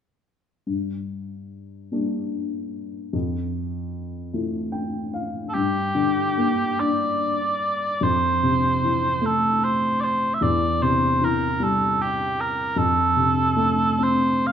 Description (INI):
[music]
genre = celtic folk, Celtic slow air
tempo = 50 BPM (dotted quarters)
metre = 6/8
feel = rubato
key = G dorian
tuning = A4 = 441 Hz
[part]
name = dark upright piano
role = accompaniment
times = 0.7-14.5 s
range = E2 to G5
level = -24 LUFS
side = left 2 dB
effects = none
[part]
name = mellow small bagpipes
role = melody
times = 5.5-14.5 s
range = G4 to F5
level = -22 LUFS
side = right 2 dB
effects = none
[sound]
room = moderate recital hall reverb, RT60 1.6 s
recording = minimal, uncompressed stereo recording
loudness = -20 LUFS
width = side -8 dB against mid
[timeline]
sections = 0.7-5.5 A section; 5.5-14.5 B section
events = upright piano fill 4.3-5.5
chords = 0.7 Gm; 3.1 Fmaj7; 5.5 Gm; 8.0 Fmaj7; 10.4 C/E; 12.8 F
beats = | 0.67 1.92 | 3.14 4.33 | 5.54 6.78 | 8.01 9.22 | 10.41 11.59 | 12.76 14.00